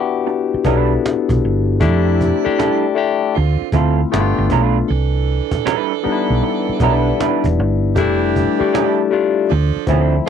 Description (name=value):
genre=R&B, neo-soul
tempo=78 BPM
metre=4/4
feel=swing 64% on 16ths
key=unclear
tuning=A4 = 437 Hz
part: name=barky tine electric piano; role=accompaniment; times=0.0-10.3 s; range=F3 to A4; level=-17 LUFS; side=left 8 dB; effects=phaser
part: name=cajon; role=drums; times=0.1-10.2 s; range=none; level=-22 LUFS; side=right 1 dB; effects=none
part: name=electric guitar through a small old amp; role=second line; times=0.3-10.2 s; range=F3 to B4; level=-20 LUFS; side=right 20 dB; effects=vibrato effect
part: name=hollow-body short-scale fingered electric bass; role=bass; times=0.5-10.2 s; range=E1 to F2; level=-17 LUFS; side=right 1 dB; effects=none
part: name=clear saxophone section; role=stabs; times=1.8-10.3 s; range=C3 to A4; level=-23 LUFS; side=right 24 dB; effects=none
room=little or no reverb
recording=dry, close 1970s-style studio recording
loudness=-14 LUFS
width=side -8 dB against mid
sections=0.0-10.3 A section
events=none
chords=0.0 Cmaj9 (rootless); 1.8 Fmaj13; 3.3 Dm7; 4.1 G9; 4.9 Cmaj9; 8.0 Fmaj13; 9.5 Dm7